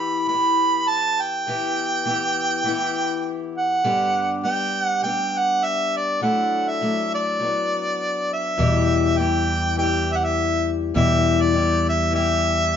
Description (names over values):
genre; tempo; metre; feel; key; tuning
acoustic folk duo or small band; 101 BPM; 4/4; swing 57% on 8ths; E minor; A4 = 440 Hz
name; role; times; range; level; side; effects
clear harmonica; melody; 0.0-12.8 s; D5 to B5; -21 LUFS; right 1 dB; none
picked steel-string acoustic guitar; accompaniment; 0.0-12.8 s; E2 to G4; -24 LUFS; left 5 dB; none
fingered electric bass; bass; 8.6-12.8 s; E2; -23 LUFS; right 1 dB; none
room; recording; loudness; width
moderate stone room reverb, RT60 1.0 s; band playing live in one room, nothing above 7.5 kHz; -19 LUFS; side -8 dB against mid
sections
0.0-8.6 A section; 8.6-12.8 A section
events
none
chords
0.0 Em; 3.8 G; 6.2 Dadd9; 7.4 Bm; 8.6 Em